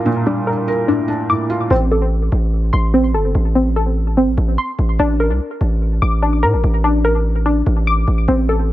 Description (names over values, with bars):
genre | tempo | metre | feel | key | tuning
hip hop | 146 BPM | 4/4 | half-time | unclear | A4 = 440 Hz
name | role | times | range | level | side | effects
felt-muted upright piano | accompaniment | 0.0-1.7 s | A2 to Bb4 | -18 LUFS | right 2 dB | low-pass filter
warbly dusty pluck | arpeggios | 0.0-8.7 s | C4 to D6 | -18 LUFS | left 1 dB | chorus, low-pass filter, tape echo
distorted 808-style bass | bass | 1.7-8.7 s | G1 to A2 | -16 LUFS | equal | distortion
room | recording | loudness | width
studio ambience | none | -14 LUFS | side -15 dB against mid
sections
0.0-1.7 A section; 1.7-8.7 B section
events
none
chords
0.0 Bb6/A; 1.7 Am; 5.0 Bb/A